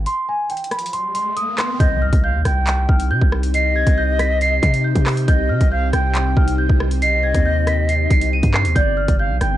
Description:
hip hop, drill; 138 BPM; 4/4; half-time; C harmonic minor; A4 = 440 Hz
long sustained 808-style bass; bass; 0.0-9.6 s; G1 to C3; -19 LUFS; equal; tube saturation
large celesta; melody; 0.1-9.6 s; G5 to Eb7; -22 LUFS; right 2 dB
drill drum kit; drums; 0.1-9.5 s; handclaps, hi-hat, kick drum, rim click; -19 LUFS; equal; vintage 12-bit sampler grit
riser and impact; sound effects; 0.8-3.5 s; -29 LUFS; equal
concert flute; second line; 1.8-9.6 s; D5 to G5; -24 LUFS; left 2 dB; tape echo
ethereal airy pad; sustained chords; 2.4-9.6 s; C3 to G4; -26 LUFS; equal; ensemble chorus, built-in reverb
little or no reverb; dry, gritty hardware recording, cassette tape; -15 LUFS; side -13 dB against mid
0.0-1.8 A section; 1.8-9.6 B section
break 0.1-1.8; riser 0.8-1.8; impact 1.8-3.5
0.0 N.C.; 1.8 Cm; 8.8 G

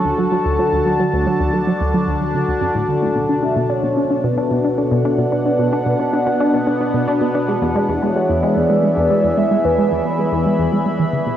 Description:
ambient, sequencer-driven space music; 111 BPM; 4/4; straight; A4 = 438 Hz
sweeping resonant pad; sustained chords; 0.0-11.4 s; B2 to B5; -18 LUFS; left 1 dB; chorus, phaser, shimmer reverb
tight sequenced synth; riff; 0.0-11.3 s; D2 to D4; -19 LUFS; equal; chorus, tape echo
mellow horn-like synth lead; melody; 3.4-10.2 s; A4 to E5; -22 LUFS; equal; chorus, shimmer reverb, tape echo
wet huge ambient reverb, RT60 9.0 s; worn, warbling old tape, cassette tape, warbly pitch drift, nothing above 10.5 kHz; -15 LUFS; side -10 dB against mid
0.0-11.4 A section
filter sweep on synth arpeggio sound 0.0-11.4
0.0 D; 3.2 Bm; 7.5 E

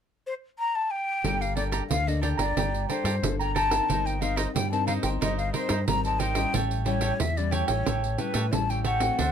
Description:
samba and choro; 91 BPM; 4/4; straight; G minor; A4 = 439 Hz
breathy hollow jazz flute; melody; 0.3-9.3 s; B4 to Bb5; -29 LUFS; left 3 dB
cavaquinho; accompaniment; 1.2-9.3 s; D4 to Bb5; -32 LUFS; right 8 dB
nylon-string guitar; accompaniment; 1.2-9.3 s; A2 to Bb4; -33 LUFS; left 7 dB
deep dub fingered electric bass; bass; 1.2-9.3 s; G1 to A2; -29 LUFS; equal
pandeiro; percussion; 1.2-9.3 s; -31 LUFS; right 6 dB
light reverb; -24 LUFS; side -8 dB against mid
0.0-1.2 A section; 1.2-9.3 B section
0.0 N.C.; 1.2 Gmadd9; 3.9 Cm7/G; 6.5 A7

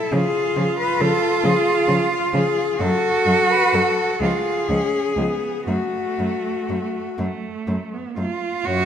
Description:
classical, lyrical piece for cello ensemble; 39-46 BPM (dotted quarters); 6/8; rubato; F# minor; A4 = 440 Hz
warm cello; melody; 0.0-8.9 s; E#4 to C#5; -22 LUFS; left 5 dB
clear cello; second line; 0.0-8.9 s; A3 to F#4; -22 LUFS; right 4 dB
dark cello; accompaniment; 0.1-8.9 s; E#3 to A3; -28 LUFS; left 2 dB
rich cello; bass; 0.1-8.9 s; C#2 to C#3; -26 LUFS; right 1 dB
moderate concert hall reverb, RT60 2.4 s; -18 LUFS; side -8 dB against mid
0.0-8.7 A section
0.1 C#; 2.8 F#m; 4.2 C#; 5.7 F#m

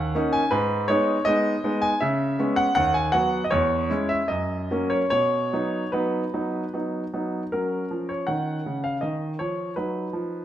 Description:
classical-period piano sonatina; 72-83 BPM; 3/4; rubato; B major; A4 = 441 Hz
clear concert grand piano; solo; 0.0-10.4 s; D#2 to G#5; -22 LUFS; equal
moderate large studio reverb, RT60 1.4 s; -22 LUFS; side -11 dB against mid
0.0-7.5 A section; 7.5-10.4 B section
0.0 D#m7; 0.5 G#m; 2.0 C#m7; 2.8 B/D#; 3.5 C#m/E; 4.3 F#; 5.1 B; 7.5 C#9

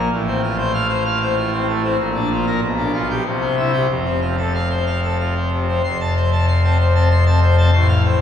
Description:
classical, organ toccata; 95 BPM; 3/4; straight; F major; A4 = 439 Hz
pipe organ, full organ; solo; 0.0-8.2 s; F1 to C6; -15 LUFS; left 1 dB
wet cathedral reverb, RT60 4.4 s; recorded in a church or concert hall, studio reverb; -16 LUFS; side -9 dB against mid
0.0-5.8 A section; 5.8-8.2 B section
0.1 F/A; 2.0 Bb; 2.6 G7/B; 3.3 C; 3.9 F

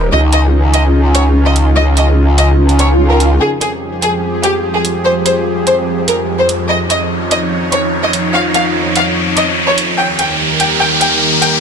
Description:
heavy wobble dubstep; 146 BPM; 4/4; half-time; F minor; A4 = 442 Hz
supersaw pad; sustained chords; 0.0-11.6 s; Eb2 to Db5; -16 LUFS; right 1 dB
growl bass; bass; 0.0-3.4 s; Db2; -10 LUFS; equal; chorus, overdrive
rich studio violin section; melody; 0.1-11.5 s; G4 to G5; -16 LUFS; left 1 dB; ping-pong delay
electronic hi-hat; drums; 0.3-11.5 s; -18 LUFS; right 3 dB; studio reverb
swell and riser; sound effects; 2.7-11.6 s; -17 LUFS; right 1 dB
light reverb; dark, warm production; -10 LUFS; side -6 dB against mid
0.0-3.4 A section; 3.4-11.6 B section
swell 2.7-3.4; build-up 3.4-11.6; riser 3.4-11.6
0.1 Dbadd9; 3.4 Fmadd9; 6.7 Dbadd9/F; 10.0 Eb

